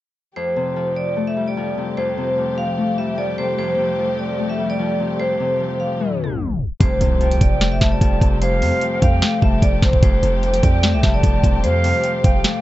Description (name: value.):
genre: hip hop, trap.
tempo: 149 BPM.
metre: 4/4.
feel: half-time.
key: F major.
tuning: A4 = 437 Hz.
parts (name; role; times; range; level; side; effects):
vibraphone with medium hard mallets; melody; 0.4-12.6 s; C5 to F5; -22 LUFS; right 1 dB; low-pass filter.
Celtic harp; accompaniment; 0.4-12.6 s; F2 to A3; -24 LUFS; left 5 dB; low-pass filter.
dark studio string section; sustained chords; 0.4-12.6 s; F3 to G4; -28 LUFS; equal; none.
hard-hitting 808-style bass; bass; 6.8-12.4 s; E1 to F2; -19 LUFS; equal; none.
trap drum kit; drums; 6.8-12.5 s; hi-hat, kick drum, snare drum; -17 LUFS; equal; vintage 12-bit sampler grit.
impact; sound effects; 6.8-8.4 s; none; -27 LUFS; right 2 dB; none.
mellow concert flute; second line; 7.2-12.6 s; F5 to A5; -26 LUFS; right 3 dB; ping-pong delay.
room: light reverb.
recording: tape stop, nothing above 7.9 kHz.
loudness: -16 LUFS.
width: side -15 dB against mid.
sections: 0.4-6.8 A section; 6.8-12.6 B section.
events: tape stop 6.0-6.8; impact 6.8-8.4.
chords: 0.4 Fadd9.